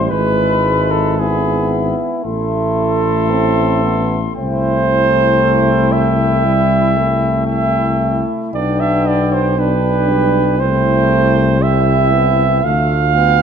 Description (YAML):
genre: classical, hymn-like piece for brass band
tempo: 58 BPM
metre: 4/4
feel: rubato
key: unclear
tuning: A4 = 445 Hz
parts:
  - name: mellow cornet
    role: melody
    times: 0.0-13.4 s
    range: F5 to C6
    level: -24 LUFS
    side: left 9 dB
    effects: none
  - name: mellow flugelhorn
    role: second line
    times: 0.0-13.4 s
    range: G#4 to F5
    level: -16 LUFS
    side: right 5 dB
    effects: none
  - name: clear euphonium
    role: accompaniment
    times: 0.0-13.4 s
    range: G3 to D4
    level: -21 LUFS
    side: right 2 dB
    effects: none
  - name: mellow trombone section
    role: accompaniment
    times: 0.0-13.4 s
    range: D4 to F4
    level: -22 LUFS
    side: left 2 dB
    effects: none
  - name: mellow tuba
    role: bass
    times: 0.0-13.4 s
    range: G#1 to D2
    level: -17 LUFS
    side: left 2 dB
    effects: none
room: moderate scoring stage reverb, RT60 1.4 s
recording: dark, warm production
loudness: -12 LUFS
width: side -7 dB against mid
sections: 0.0-13.4 A section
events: none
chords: 0.1 E/G#; 2.2 Am; 4.4 C; 8.5 G/B; 10.6 C; 12.6 Dm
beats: | 0.11 1.19 2.25 3.31 | 4.37 5.41 6.44 7.47 | 8.53 9.57 10.57 11.60 | 12.63